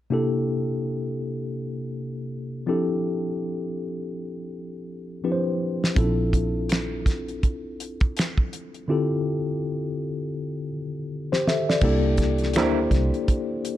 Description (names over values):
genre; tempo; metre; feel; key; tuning
R&B, neo-soul; 82 BPM; 4/4; swing 59% on 16ths; unclear; A4 = 440 Hz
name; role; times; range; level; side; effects
mellow tine electric piano; accompaniment; 0.1-13.8 s; C3 to E5; -26 LUFS; left 2 dB; medium stereo tremolo
damped 70s drum kit; drums; 5.8-13.8 s; crash cymbal, finger snaps, hi-hat, kick drum, snare drum; -23 LUFS; right 1 dB; none
vintage muted fingered electric bass; bass; 6.0-13.1 s; Bb1 to D2; -25 LUFS; right 1 dB; none
electric guitar through a small old amp; second line; 12.6-12.8 s; G3 to Bb4; -31 LUFS; right 8 dB; none
room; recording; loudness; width
light reverb, small room ambience; dark, warm production, faint mains hum; -23 LUFS; side -13 dB against mid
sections
0.1-11.8 A section; 11.8-13.8 B section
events
drum fill 4.5-6.0, 11.1-11.8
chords
0.1 C9; 2.7 Fmaj9; 6.0 Bbmaj9; 8.9 Dm9; 11.8 C9